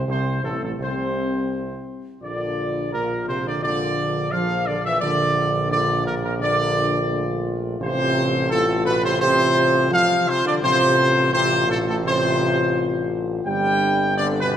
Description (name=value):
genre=classical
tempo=85 BPM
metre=4/4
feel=straight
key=unclear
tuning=A4 = 444 Hz
part: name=dark trumpet section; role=melody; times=0.0-14.6 s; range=A4 to G5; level=-21 LUFS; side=equal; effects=none
part: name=dark French horn section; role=sustained chords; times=0.0-14.6 s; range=G3 to F4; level=-27 LUFS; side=left 4 dB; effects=none
part: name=warm trombone section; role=sustained chords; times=0.0-14.5 s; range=A2 to G3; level=-26 LUFS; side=right 2 dB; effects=none
part: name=clear tuba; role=bass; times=0.0-14.6 s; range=G1 to C2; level=-27 LUFS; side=right 2 dB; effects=none
room=wet scoring stage reverb, RT60 1.8 s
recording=none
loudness=-18 LUFS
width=side -9 dB against mid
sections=0.0-14.6 A section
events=none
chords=0.0 F (rootless); 2.2 Bb; 7.8 Fadd9/A; 13.5 Gsus4